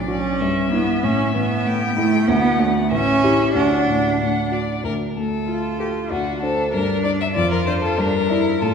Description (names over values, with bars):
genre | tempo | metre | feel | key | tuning
quick classical-period movement for piano trio | 95 BPM | 2/4 | straight | D major, D minor from 4.8 s | A4 = 437 Hz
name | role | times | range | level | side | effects
rich violin | melody | 0.0-8.7 s | F#4 to G5 | -24 LUFS | left 5 dB | none
warm baby grand piano | accompaniment | 0.0-8.7 s | A1 to D5 | -21 LUFS | left 1 dB | none
rich cello | second line | 0.1-8.7 s | A3 to F4 | -21 LUFS | right 4 dB | none
room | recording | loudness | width
wet scoring stage reverb, RT60 1.9 s | heard from further back in the room | -17 LUFS | side -6 dB against mid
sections
0.0-4.8 A section; 4.8-8.7 B section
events
none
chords
0.4 Em7/G; 1.0 A5; 2.3 D; 2.9 A7; 3.6 D; 4.8 Dm; 6.1 D7; 6.7 Gm; 7.4 Dm/F; 8.0 Em7b5/G